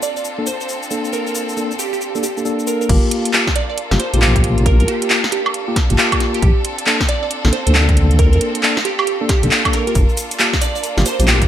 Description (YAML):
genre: UK garage, two-step garage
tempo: 136 BPM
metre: 4/4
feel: swing 63% on 16ths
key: unclear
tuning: A4 = 440 Hz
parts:
  - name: glassy wavetable pluck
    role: melody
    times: 0.0-11.2 s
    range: G4 to D5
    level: -24 LUFS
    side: right 5 dB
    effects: chorus, ping-pong delay
  - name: bright studio violin section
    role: sustained chords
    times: 0.0-11.5 s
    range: Bb3 to A4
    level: -27 LUFS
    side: left 1 dB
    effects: sidechain pumping
  - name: house drum kit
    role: drums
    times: 0.0-11.5 s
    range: cabasa, crash cymbal, handclaps, hi-hat, snare drum, woodblock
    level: -18 LUFS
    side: equal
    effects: gated reverb
  - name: mellow tine electric piano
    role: stabs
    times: 0.4-11.5 s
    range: Bb3 to A4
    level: -22 LUFS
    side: left 1 dB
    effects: fast stereo tremolo
  - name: deep soft wobble bass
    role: bass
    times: 2.9-11.5 s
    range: G1 to F2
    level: -14 LUFS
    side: equal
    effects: chorus
  - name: electronic kick drum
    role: drums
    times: 2.9-11.5 s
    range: none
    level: -16 LUFS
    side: equal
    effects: none
room: light reverb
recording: bright 1980s-style digital production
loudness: -14 LUFS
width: side -11 dB against mid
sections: 0.0-2.9 A section; 2.9-11.5 B section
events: drop 2.9-11.5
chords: 0.0 Bbmaj7; 2.9 Gm7; 6.4 Bbmaj7; 10.0 Gm7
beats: 0.25 0.69 | 1.13 1.57 2.01 2.45 | 2.89 3.34 3.78 4.22 | 4.66 5.10 5.54 5.98 | 6.42 6.87 7.31 7.75 | 8.19 8.63 9.07 9.51 | 9.95 10.39 10.84 11.28